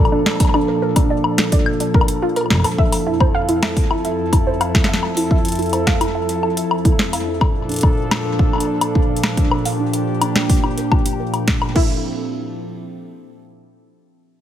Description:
IDM; 107 BPM; 4/4; straight; F major; A4 = 440 Hz
warbly tape-like pad; sustained chords; 0.0-12.0 s; F2 to A4; -20 LUFS; equal; chorus, built-in reverb, vintage 12-bit sampler grit
warbly dusty pluck; arpeggios; 0.1-12.0 s; D4 to F5; -24 LUFS; right 2 dB; wide subtle chorus, tape echo
booming analog drum machine; drums; 0.1-11.7 s; hi-hat, snare drum, woodblock; -21 LUFS; left 2 dB; tape echo
industrial drum kit; drums; 0.4-11.9 s; crash cymbal, kick drum; -17 LUFS; equal
light reverb; -15 LUFS; side -10 dB against mid
0.0-11.8 A section; 11.8-14.0 B section
filter sweep on synth pluck 0.0-11.8
0.0 Bbmaj7; 2.8 Fmaj7; 7.3 Bbmaj7; 11.8 Fmaj7

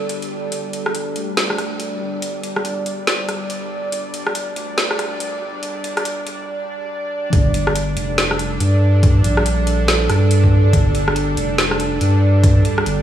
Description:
deep dubstep; 141 BPM; 4/4; swing 61% on 16ths, half-time; A4 = 438 Hz
bowed-like drone; sustained chords; 0.0-13.0 s; G3 to D5; -22 LUFS; right 1 dB; built-in reverb
saturated sub bass; bass; 0.0-13.0 s; F1 to G2; -19 LUFS; equal; tube saturation, high-pass filter
garage drum kit; drums; 0.1-13.0 s; hi-hat, rim click, snare drum; -22 LUFS; equal
electronic kick drum; drums; 7.3-12.5 s; -16 LUFS; equal
light reverb, digital ambience; high-pass filter, studio reverb; -16 LUFS; side -11 dB against mid
0.0-7.3 A section; 7.3-13.0 B section
build-up 0.0-7.3; filter sweep on synth drone 0.0-7.3; drop 7.3-13.0
0.0 G5

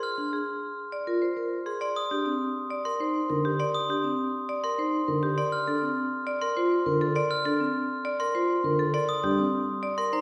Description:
classical, minimalist pattern music; 101 BPM; 3/4; straight; Eb lydian; A4 = 440 Hz
marimba with hard mallets; melody; 0.0-10.2 s; G4 to D5; -34 LUFS; equal
glockenspiel with brass mallets; arpeggios; 0.0-10.2 s; Bb5 to F6; -32 LUFS; equal
vibraphone with soft mallets; arpeggios; 0.2-10.2 s; C4 to Bb4; -32 LUFS; equal
dark concert grand piano; accompaniment; 3.3-9.4 s; D3 to G3; -34 LUFS; equal
wet scoring stage reverb, RT60 1.5 s; heard from further back in the room; -28 LUFS; mono
0.0-1.8 A section; 1.8-10.2 B section
0.0 Bb; 1.8 Ebmaj7; 5.4 Bbmaj7; 8.9 Cm

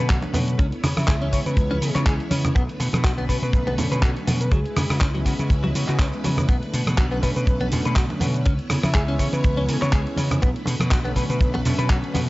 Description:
nu-disco, nu disco; 122 BPM; 4/4; swing 55% on 16ths; B dorian; A4 = 443 Hz
mellow synth brass; accompaniment; 0.0-12.3 s; D3 to C#4; -31 LUFS; equal; chorus, analog delay
string machine, full ensemble; sustained chords; 0.0-12.3 s; D3 to C#5; -31 LUFS; equal; ensemble chorus, sidechain pumping
direct-recorded clean electric guitar; riff; 0.0-12.2 s; F#3 to C#5; -31 LUFS; left 2 dB; wide subtle chorus
vintage slap bass; bass; 0.0-12.3 s; B1 to C#3; -24 LUFS; equal
impact; sound effects; 0.0-0.6 s; barely audible
dusty soul sampler-style drum kit; drums; 0.1-12.3 s; cabasa, handclaps, hi-hat, rim click; -29 LUFS; equal
kick drum; drums; 0.1-12.0 s; -20 LUFS; equal
congas; percussion; 0.2-12.3 s; -28 LUFS; right 1 dB
soft octave-layered synth lead; melody; 1.0-11.5 s; G#4 to E5; -32 LUFS; equal; chorus
digital ambience; dry, gritty hardware recording, cassette tape, nothing above 7.7 kHz; -19 LUFS; side -19 dB against mid
0.0-12.3 A section
impact 0.0-0.6
0.0 Bm7; 0.6 C#m7; 2.6 Bm7; 4.5 F#9sus4/C#; 6.5 Bm7; 8.5 C#m7; 10.4 Bm7

